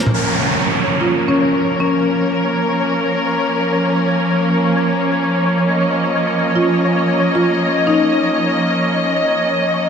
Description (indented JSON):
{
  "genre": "drum and bass",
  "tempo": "free time",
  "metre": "none",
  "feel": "none",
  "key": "Bb minor",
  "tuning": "A4 = 440 Hz",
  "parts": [
    { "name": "muted studio string section", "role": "sustained chords", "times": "0.0-9.9 s", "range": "F3 to Eb5", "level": "-16 LUFS", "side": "equal", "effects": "vintage 12-bit sampler grit" },
    { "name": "pulsing gated texture", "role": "texture", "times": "0.0-9.9 s", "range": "Bb4 to Db5", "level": "-22 LUFS", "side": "equal", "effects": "chorus, built-in reverb" },
    { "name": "downlifter", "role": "sound effects", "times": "0.1-2.9 s", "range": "none", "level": "-20 LUFS", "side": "right 2 dB", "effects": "none" },
    { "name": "marimba with medium mallets", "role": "melody", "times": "1.0-2.0, 6.6-8.0 s", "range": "Db4 to F4", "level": "-20 LUFS", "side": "left 1 dB", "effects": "dub echo" }
  ],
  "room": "wet lush hall reverb, RT60 2.5 s",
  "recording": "dark, warm production",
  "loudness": "-14 LUFS",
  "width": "side -7 dB against mid",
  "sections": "0.1-9.9 A section",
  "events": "none",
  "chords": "0.1 Bbm"
}